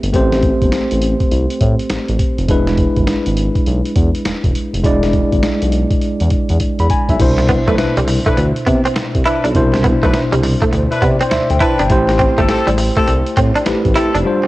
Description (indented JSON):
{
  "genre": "R&B, new jack swing",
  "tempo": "102 BPM",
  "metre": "4/4",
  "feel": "swing 64% on 16ths",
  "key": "A minor",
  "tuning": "A4 = 440 Hz",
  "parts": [
    { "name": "tine electric piano", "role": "accompaniment", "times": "0.0-14.5 s", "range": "B2 to B5", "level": "-17 LUFS", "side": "equal", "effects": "medium stereo tremolo, cassette tape" },
    { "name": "smooth synth bass", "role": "bass", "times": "0.0-14.2 s", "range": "E1 to C3", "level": "-17 LUFS", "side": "equal", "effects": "none" },
    { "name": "boom bap sampler-style drum kit", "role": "drums", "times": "0.0-14.2 s", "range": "crash cymbal, hi-hat, kick drum, snare drum", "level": "-18 LUFS", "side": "equal", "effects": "cassette tape" },
    { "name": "direct-recorded clean electric guitar", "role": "riff", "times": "7.4-14.5 s", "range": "G3 to E4", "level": "-19 LUFS", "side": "right 2 dB", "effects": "lush chorus, cassette tape" },
    { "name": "warm horn section", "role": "stabs", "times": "7.7-14.2 s", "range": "C4 to B4", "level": "-22 LUFS", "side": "left 2 dB", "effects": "cassette tape" }
  ],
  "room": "light reverb, digital ambience",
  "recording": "home recording on cassette",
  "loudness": "-12 LUFS",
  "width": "side -18 dB against mid",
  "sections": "0.0-7.2 A section; 7.2-14.5 B section",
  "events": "drum fill 6.6-7.2",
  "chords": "0.0 Am9; 2.5 E7; 7.2 Cmaj9; 11.9 Am7",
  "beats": "| 0.14 0.72 1.31 1.90 | 2.49 3.08 3.66 4.25 | 4.84 5.43 6.02 6.61 | 7.19 7.78 8.37 8.96 | 9.55 10.13 10.72 11.31 | 11.90 12.49 13.08 13.66 | 14.25"
}